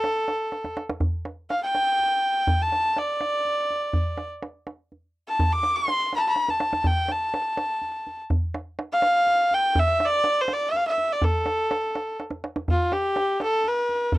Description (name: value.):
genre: Persian modal ensemble.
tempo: 82 BPM (dotted quarters).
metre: 6/8.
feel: straight.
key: A dastgah shur.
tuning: A4 = 440 Hz.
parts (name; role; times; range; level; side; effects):
clear kamancheh; melody; 0.0-14.2 s; F4 to D6; -22 LUFS; equal; none.
tombak; percussion; 0.0-14.2 s; none; -26 LUFS; equal; none.
room: little or no reverb.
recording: dry, close 1970s-style studio recording.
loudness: -22 LUFS.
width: side -17 dB against mid.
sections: 0.0-1.0 A section; 1.0-12.7 B section; 12.7-14.2 C section.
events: drum fill 0.5-1.0, 6.4-6.9, 12.2-12.7.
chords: none.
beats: 0.29 | 1.02 1.75 | 2.48 3.21 | 3.94 4.67 | 5.40 6.13 | 6.86 7.59 | 8.32 9.04 | 9.77 10.50 | 11.23 11.96 | 12.69 13.41 | 14.14.